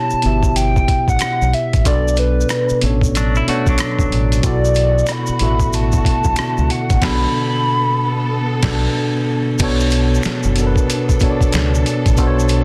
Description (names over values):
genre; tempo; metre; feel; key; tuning
R&B, neo-soul; 93 BPM; 4/4; swing 63% on 16ths; B minor; A4 = 440 Hz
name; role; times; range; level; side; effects
hollow clarinet-like synth lead; melody; 0.0-8.9 s; B4 to B5; -22 LUFS; equal; chorus, phaser
mellow tine electric piano; accompaniment; 0.0-12.6 s; B2 to E5; -22 LUFS; equal; none
deep dub fingered electric bass; bass; 0.1-12.6 s; F#1 to C#2; -20 LUFS; equal; none
maracas and finger snaps; percussion; 0.1-12.6 s; none; -33 LUFS; equal; none
boom bap sampler-style drum kit; drums; 0.2-12.6 s; crash cymbal, hi-hat, kick drum, rim click, snare drum; -22 LUFS; equal; none
semi-hollow electric guitar; second line; 3.2-4.4 s; F#3 to F#4; -25 LUFS; equal; spring reverb
warm studio string section; sustained chords; 4.4-12.6 s; D3 to A4; -31 LUFS; equal; none
room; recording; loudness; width
little or no reverb; dense, heavily limited modern master; -16 LUFS; mono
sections
0.0-9.6 A section; 9.6-12.6 B section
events
band accent 7.0-9.6; silent gap 8.9-9.6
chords
0.0 C#m7b5; 1.9 Bm9; 4.4 E9sus4; 7.0 Bm7